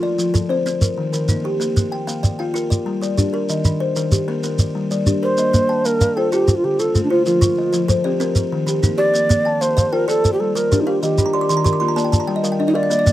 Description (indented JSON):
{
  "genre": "southern african traditional, mbira-style interlocking cycle",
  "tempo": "128 BPM (dotted quarters)",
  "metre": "12/8",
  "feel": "straight",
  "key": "Bb major",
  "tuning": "A4 = 440 Hz",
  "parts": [
    { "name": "breathy mellow low Native American-style wooden flute", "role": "melody", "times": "0.0-0.3, 5.2-13.1 s", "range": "D4 to D5", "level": "-18 LUFS", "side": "right 2 dB", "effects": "none" },
    { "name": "buzzing kalimba", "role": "arpeggios", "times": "0.0-13.1 s", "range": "D3 to A5", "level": "-21 LUFS", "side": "left 4 dB", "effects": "none" },
    { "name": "kalimba", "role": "arpeggios", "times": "0.0-13.1 s", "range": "D3 to D6", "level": "-24 LUFS", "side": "right 3 dB", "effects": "none" },
    { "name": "shekere", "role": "percussion", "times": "0.2-13.1 s", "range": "none", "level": "-18 LUFS", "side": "right 1 dB", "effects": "none" }
  ],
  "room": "light reverb",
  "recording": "dry, close 1970s-style studio recording",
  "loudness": "-16 LUFS",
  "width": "side -14 dB against mid",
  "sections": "0.0-5.4 A section; 5.4-13.1 B section",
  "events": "kalimba fill 11.1-12.9",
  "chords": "0.0 F; 0.7 Eb; 1.6 Bb; 2.5 Gm; 3.5 Eb; 4.4 Gm; 5.4 Bb; 6.3 Dm; 7.3 F; 8.2 Eb; 9.1 Bb; 10.1 Gm; 11.0 Eb; 12.0 Gm"
}